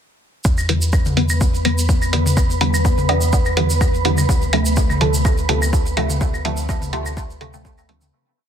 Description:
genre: dub techno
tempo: 125 BPM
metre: 4/4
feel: swing 54% on 16ths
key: E phrygian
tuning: A4 = 440 Hz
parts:
  - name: soft dub sub bass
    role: bass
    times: 0.4-8.1 s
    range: D2 to E2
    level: -21 LUFS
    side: equal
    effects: sidechain pumping
  - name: tube shaker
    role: percussion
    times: 0.4-8.1 s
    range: none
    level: -28 LUFS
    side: right 3 dB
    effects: none
  - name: electronic kick drum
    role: drums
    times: 0.5-7.8 s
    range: none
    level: -18 LUFS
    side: equal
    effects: overdrive
  - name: wind-like tuned noise texture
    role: texture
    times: 0.9-8.1 s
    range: B3 to B4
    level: -26 LUFS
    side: right 2 dB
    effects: built-in reverb, sidechain pumping
  - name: electronic claves and toms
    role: percussion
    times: 0.6-8.1 s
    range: none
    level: -26 LUFS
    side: left 2 dB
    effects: sidechain pumping on perc, sidechain pumping on toms, dub echo
  - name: filtered dub chord stab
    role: stabs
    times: 0.7-8.1 s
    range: C3 to B3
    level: -22 LUFS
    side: equal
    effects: phaser, sidechain pumping, dub echo
  - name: electronic hi-hat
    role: drums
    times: 0.7-8.0 s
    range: none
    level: -23 LUFS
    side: right 2 dB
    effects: overdrive
room: light reverb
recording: dense, heavily limited modern master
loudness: -15 LUFS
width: side -8 dB against mid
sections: 0.5-8.1 groove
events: fade-out 5.6-8.1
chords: 0.5 Em7; 4.3 Dm7

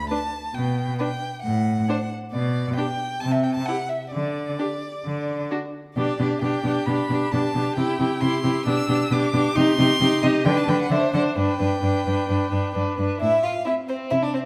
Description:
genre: quick classical-period movement for string quartet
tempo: 133 BPM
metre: 4/4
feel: straight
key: G major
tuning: A4 = 441 Hz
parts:
  - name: rich violin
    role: melody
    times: 0.0-14.4 s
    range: C5 to E6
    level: -30 LUFS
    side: equal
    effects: none
  - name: rich cello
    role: bass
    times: 0.0-14.5 s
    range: G2 to D3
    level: -27 LUFS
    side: equal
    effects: none
  - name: rich violin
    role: second line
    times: 0.1-14.4 s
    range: C4 to C5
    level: -30 LUFS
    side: equal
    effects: none
  - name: rich viola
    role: accompaniment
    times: 0.1-14.0 s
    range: C4 to E4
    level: -27 LUFS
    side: equal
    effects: none
room: wet recital hall reverb, RT60 1.3 s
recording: none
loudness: -23 LUFS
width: mono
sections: 0.0-13.2 A section; 13.2-14.5 B section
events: none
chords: 0.0 G (rootless); 0.6 G/B; 1.4 D/A (rootless); 2.3 G/B; 3.2 C6; 4.1 N.C.; 6.0 G/B; 7.8 C; 8.7 G/B; 9.6 Cm; 10.5 D6; 11.4 G; 13.2 Am

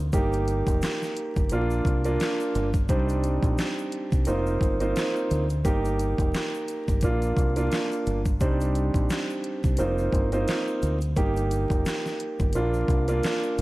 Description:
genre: hip hop, boom-bap hip-hop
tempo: 87 BPM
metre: 4/4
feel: swing 56% on 16ths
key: unclear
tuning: A4 = 440 Hz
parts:
  - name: deep dub fingered electric bass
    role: bass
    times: 0.0-13.6 s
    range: F1 to D2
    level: -26 LUFS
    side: equal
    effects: none
  - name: dark baby grand piano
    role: accompaniment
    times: 0.1-13.6 s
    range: G3 to C5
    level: -26 LUFS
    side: right 1 dB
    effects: high-pass filter, low-pass filter
  - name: pop drum kit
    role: drums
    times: 0.1-13.6 s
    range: handclaps, hi-hat, kick drum, snare drum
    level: -27 LUFS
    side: equal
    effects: overdrive
  - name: egg shaker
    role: percussion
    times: 0.1-13.6 s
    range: none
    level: -50 LUFS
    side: left 4 dB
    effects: none
room: light reverb, digital ambience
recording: vinyl crackle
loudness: -23 LUFS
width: side -19 dB against mid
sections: 0.0-13.6 A section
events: none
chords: 0.1 Eb; 1.5 Bb; 2.9 Cmadd9; 4.3 F7sus4; 5.7 Eb; 7.0 Bb; 8.4 Cmadd9; 9.8 F7sus4; 11.2 Eb; 12.5 Bb

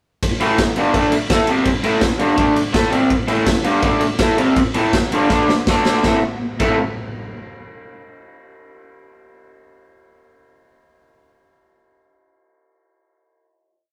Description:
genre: garage rock duo or trio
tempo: 164 BPM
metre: 4/4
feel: straight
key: A minor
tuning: A4 = 440 Hz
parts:
  - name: raw garage drum kit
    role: drums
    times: 0.2-6.7 s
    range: crash cymbal, kick drum, ride cymbal, snare drum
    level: -22 LUFS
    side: equal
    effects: none
  - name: raw garage guitar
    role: riff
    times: 0.4-6.8 s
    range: G2 to A4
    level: -18 LUFS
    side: equal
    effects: overdrive
room: moderate stone room reverb, RT60 1.0 s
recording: rough rehearsal-room recording, tube saturation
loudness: -17 LUFS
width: mono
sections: 0.2-6.0 riff; 6.0-7.5 final chord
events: drum fill 5.3-6.0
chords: 0.2 Am; 5.7 D5; 6.0 Am

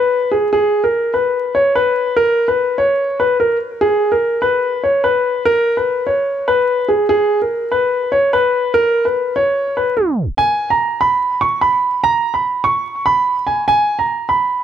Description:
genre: hip hop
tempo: 146 BPM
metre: 4/4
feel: half-time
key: unclear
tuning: A4 = 440 Hz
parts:
  - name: dark grand piano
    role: solo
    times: 0.0-14.6 s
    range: G#4 to C#6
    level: -13 LUFS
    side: equal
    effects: low-pass filter
room: light reverb, small room ambience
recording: vinyl crackle, tape stop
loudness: -13 LUFS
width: side -9 dB against mid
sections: 0.0-10.4 A section; 10.4-14.6 B section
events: tape stop 10.0-10.4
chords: none

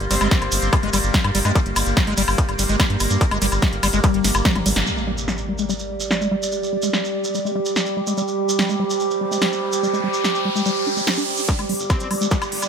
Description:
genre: psychedelic trance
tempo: 145 BPM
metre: 4/4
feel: straight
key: G phrygian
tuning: A4 = 440 Hz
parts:
  - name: overtone-sweeping drone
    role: sustained chords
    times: 0.0-12.7 s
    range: G3 to G4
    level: -27 LUFS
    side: equal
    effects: chorus, built-in reverb, sidechain pumping
  - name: round analog bass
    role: bass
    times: 0.0-4.8, 11.6-12.7 s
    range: G1 to G2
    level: -24 LUFS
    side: equal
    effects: high-pass filter
  - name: techno drum kit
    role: drums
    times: 0.0-12.7 s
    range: hi-hat, ride cymbal, snare drum, toms, woodblock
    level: -23 LUFS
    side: left 1 dB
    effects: high-pass filter on hats, low-pass filter on hats, high-pass filter on perc, low-pass filter on perc, high-pass filter on snare, low-pass filter on snare, high-pass filter on cymbals, low-pass filter on cymbals, high-pass filter on toms, low-pass filter on toms
  - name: warbly tape-like pad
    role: texture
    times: 0.0-12.7 s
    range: G3 to D6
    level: -27 LUFS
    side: right 5 dB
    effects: chorus, built-in reverb, sidechain pumping
  - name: metallic wobble bass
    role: second line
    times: 0.1-0.7, 11.9-12.1 s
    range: C4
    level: -30 LUFS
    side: left 3 dB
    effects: distortion, chorus, sidechain pumping, high-pass filter, tape echo
  - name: liquid acid bass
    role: riff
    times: 0.1-12.4 s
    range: G3 to D4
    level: -25 LUFS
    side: moving between left 6 dB and right 5 dB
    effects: chorus, auto-pan, sidechain pumping, digital delay
  - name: shekere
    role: percussion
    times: 0.1-12.7 s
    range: none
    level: -29 LUFS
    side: right 4 dB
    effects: none
  - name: electronic kick drum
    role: drums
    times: 0.3-4.5, 11.5-12.4 s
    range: none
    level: -19 LUFS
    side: equal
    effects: distortion, overdrive
  - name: impact and riser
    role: sound effects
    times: 4.9-12.7 s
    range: none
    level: -28 LUFS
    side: equal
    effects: none
room: light reverb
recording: none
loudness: -18 LUFS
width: side -7 dB against mid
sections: 0.0-4.9 A section; 4.9-11.5 B section; 11.5-12.7 C section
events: drop 0.0-4.9; drum fill 4.5-4.9, 11.5-12.7; band accent 4.8; impact 4.9-6.5; riser 9.0-11.5, 11.5-12.7; build-up 11.5-12.7; filter sweep on acid bass 11.5-12.7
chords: 0.0 G5

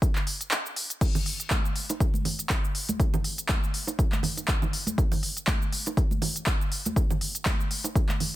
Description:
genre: house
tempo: 121 BPM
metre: 4/4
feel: swing 56% on 16ths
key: none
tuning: none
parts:
  - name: deep house drum kit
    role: drums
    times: 0.0-8.3 s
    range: crash cymbal, handclaps, hi-hat, shaker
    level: -30 LUFS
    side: equal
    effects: small room ambience
  - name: electronic kick drum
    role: drums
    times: 0.0-8.1 s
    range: none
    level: -26 LUFS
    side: equal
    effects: small room ambience
  - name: congas and bongos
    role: percussion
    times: 1.2-8.3 s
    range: none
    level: -33 LUFS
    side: right 3 dB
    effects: none
room: little or no reverb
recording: dense, heavily limited modern master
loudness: -24 LUFS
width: side -16 dB against mid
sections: 0.0-8.4 A section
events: kick drops out 0.5-1.0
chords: none

